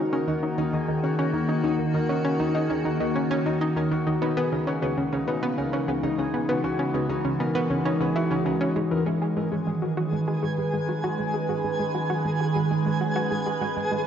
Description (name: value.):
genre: ambient, sequencer-driven space music.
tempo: 99 BPM.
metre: 4/4.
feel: straight.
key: G# minor from 9.1 s.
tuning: A4 = 441 Hz.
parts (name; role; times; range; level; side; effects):
evolving wavetable pad; sustained chords; 0.0-14.1 s; Db3 to B4; -26 LUFS; right 1 dB; chorus, built-in reverb, phaser.
concert harp; arpeggios; 0.0-14.1 s; G#3 to Bb4; -30 LUFS; left 4 dB; auto-pan, tape echo.
analog pluck; riff; 0.0-14.0 s; Db3 to G#4; -28 LUFS; equal; chorus, tape echo.
twinkling granular texture; texture; 9.5-14.1 s; G#4 to G#5; -31 LUFS; right 1 dB; built-in reverb.
room: wet lush hall reverb, RT60 2.6 s.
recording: worn, warbling old tape, cassette tape, warbly pitch drift, nothing above 7.8 kHz.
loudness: -23 LUFS.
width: side -8 dB against mid.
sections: 0.0-9.1 A section; 9.1-14.1 B section.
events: fade-in on harp 9.1-14.1.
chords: 0.0 Ebm7; 4.2 Dbm7; 9.1 G#m7.